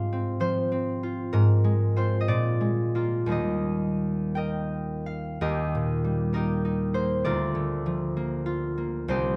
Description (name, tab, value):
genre	classical, solo harp piece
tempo	56-67 BPM (dotted quarters)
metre	6/8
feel	rubato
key	Eb major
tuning	A4 = 440 Hz
part	concert harp	solo	0.0-9.4 s	C2 to G5	-26 LUFS	equal	none
room	moderate recital hall reverb, RT60 1.6 s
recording	close, detailed microphones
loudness	-27 LUFS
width	mono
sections	0.0-5.4 A section; 5.4-9.4 B section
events	none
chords	0.0 Fm/Ab; 2.3 Bb7; 3.3 Eb; 7.3 Bb/D